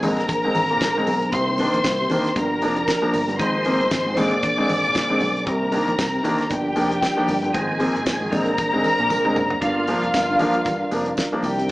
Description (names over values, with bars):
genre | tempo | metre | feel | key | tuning
disco | 116 BPM | 4/4 | swing 56% on 16ths | unclear | A4 = 440 Hz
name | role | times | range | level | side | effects
dark symphonic string section | second line | 0.0-11.7 s | F4 to D6 | -22 LUFS | equal | none
warm concert grand piano | accompaniment | 0.0-11.7 s | G2 to D4 | -24 LUFS | equal | none
percussive tonewheel organ | sustained chords | 0.0-11.7 s | D3 to Bb4 | -27 LUFS | right 1 dB | chorus vibrato, fast rotary speaker
fingered electric bass | bass | 0.0-11.7 s | F1 to C2 | -29 LUFS | equal | none
damped 70s drum kit | drums | 0.0-11.7 s | hi-hat, kick drum, snare drum, toms | -29 LUFS | equal | none
congas | percussion | 0.0-11.7 s | none | -33 LUFS | equal | none
tambourine | percussion | 0.0-11.6 s | none | -42 LUFS | right 2 dB | none
room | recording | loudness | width
moderate large studio reverb, RT60 0.9 s | band playing live in one room, small speaker sound | -18 LUFS | side -18 dB against mid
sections
0.0-9.6 A section; 9.6-11.7 B section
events
drum fill 9.1-9.6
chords
0.0 Bb9; 1.3 Cm7; 2.4 Gm7; 3.4 Ab6; 4.2 Bb9; 5.5 Cm7; 6.5 Gm7; 7.5 Ab6; 8.3 Bb9; 9.6 Gm7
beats
0.28 0.80 | 1.32 1.84 2.36 2.88 | 3.39 3.91 4.43 4.95 | 5.47 5.99 6.50 7.02 | 7.54 8.06 8.58 9.10 | 9.62 10.14 10.66 11.18 | 11.69